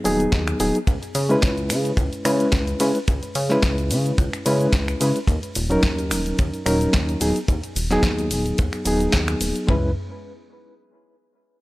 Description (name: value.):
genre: nu-disco, nu disco.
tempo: 109 BPM.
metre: 4/4.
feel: swing 54% on 16ths.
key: C# dorian.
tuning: A4 = 440 Hz.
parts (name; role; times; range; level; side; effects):
reed electric piano; accompaniment; 0.0-9.9 s; F#3 to B4; -22 LUFS; equal; fast tremolo, sidechain pumping, analog delay.
chorused synth bass; bass; 0.1-9.9 s; D#1 to C#3; -24 LUFS; equal; none.
house drum kit; drums; 0.1-9.7 s; finger snaps, hi-hat, ride cymbal, shaker, snare drum; -27 LUFS; equal; none.
tight funk drum kit; drums; 0.3-9.8 s; kick drum, toms; -22 LUFS; equal; none.
room: little or no reverb.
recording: dry, gritty hardware recording.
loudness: -19 LUFS.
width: side -19 dB against mid.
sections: 0.0-9.7 A section; 9.7-11.6 B section.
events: drop 0.0-9.7.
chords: 0.0 G#m7/D#; 0.9 C#m7; 5.3 D#m7; 7.2 G#m7/D#; 9.7 C#m7.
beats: 0.33 | 0.88 1.43 1.98 2.53 | 3.08 3.63 4.18 4.73 | 5.28 5.83 6.38 6.93 | 7.48 8.03 8.58 9.13 | 9.69.